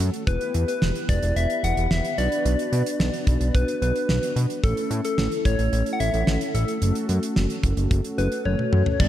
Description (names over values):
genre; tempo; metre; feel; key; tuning
synth-pop; 110 BPM; 4/4; straight; unclear; A4 = 442 Hz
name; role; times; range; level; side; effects
mellow synth brass; accompaniment; 0.0-9.1 s; A3 to B4; -29 LUFS; equal; chorus
fat analog bass; bass; 0.0-9.1 s; E1 to B2; -22 LUFS; equal; none
damped 70s drum kit; drums; 0.0-9.1 s; crash cymbal, hi-hat, kick drum, snare drum, toms; -26 LUFS; equal; none
soft struck synth lead; melody; 0.3-9.1 s; A4 to F#5; -27 LUFS; left 2 dB; chorus, analog delay
warm analog pad; sustained chords; 9.0-9.1 s; G3 to D4; -28 LUFS; left 2 dB; chorus
impact; sound effects; 9.0-9.1 s; none; -24 LUFS; right 1 dB; none
room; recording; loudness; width
moderate lush hall reverb, RT60 2.4 s; dreamy mix soaked in reverb; -21 LUFS; side -12 dB against mid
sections
0.0-9.0 A section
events
drum fill 8.5-9.0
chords
0.3 Em; 2.2 Bm; 4.6 A; 6.8 F#m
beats
| 0.27 0.82 1.36 1.91 | 2.45 3.00 3.54 4.09 | 4.64 5.18 5.73 6.27 | 6.82 7.36 7.91 8.45 | 9.00